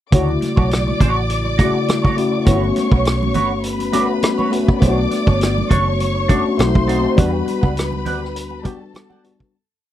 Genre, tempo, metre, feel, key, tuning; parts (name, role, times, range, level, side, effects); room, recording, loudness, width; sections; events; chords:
lush 1970s-style soul; 102 BPM; 4/4; swing 54% on 16ths; D major; A4 = 443 Hz
warm studio string section; second line; 0.1-9.5 s; A4 to D6; -25 LUFS; equal
tine electric piano; accompaniment; 0.1-9.6 s; C#3 to F#4; -20 LUFS; left 3 dB; ensemble chorus
clean electric guitar; riff; 0.1-9.4 s; D4 to G5; -24 LUFS; right 3 dB; wah
vintage muted fingered electric bass; bass; 0.1-8.8 s; F#1 to E2; -21 LUFS; right 1 dB
vintage drum kit; drums; 0.1-9.5 s; hi-hat, kick drum, rim click; -16 LUFS; right 1 dB
congas; percussion; 0.1-9.2 s; -28 LUFS; right 6 dB
little or no reverb; dry, close 1970s-style studio recording; -14 LUFS; side -12 dB against mid
0.1-9.5 verse
fade-out 7.2-9.5
0.1 Dmaj7; 2.5 Gmaj9#11; 4.8 Bm9; 6.6 B7b9; 7.2 Em9 (rootless)